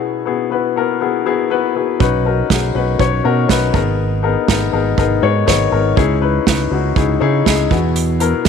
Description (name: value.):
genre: piano-driven pop.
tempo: 121 BPM.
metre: 4/4.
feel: straight.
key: unclear.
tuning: A4 = 439 Hz.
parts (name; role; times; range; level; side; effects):
dark upright piano; accompaniment; 0.0-8.5 s; G#2 to C#5; -16 LUFS; left 10 dB; none.
fingered electric bass; bass; 2.0-8.5 s; G#1 to C#3; -18 LUFS; right 2 dB; none.
unplugged drum kit; drums; 2.0-8.5 s; hi-hat, kick drum, snare drum; -18 LUFS; right 6 dB; none.
room: light reverb, studio ambience.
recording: 1960s-style stereo with parts hard left and right.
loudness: -13 LUFS.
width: side -6 dB against mid.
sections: 0.0-8.5 A section.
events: none.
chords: 0.0 Eadd9; 2.0 Badd9; 3.7 G#madd9; 6.0 C#madd9; 7.7 Eadd9.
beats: | 0.02 0.51 1.01 1.50 | 2.00 2.50 2.99 3.49 | 3.99 4.48 4.98 5.48 | 5.97 6.47 6.97 7.46 | 7.96 8.46.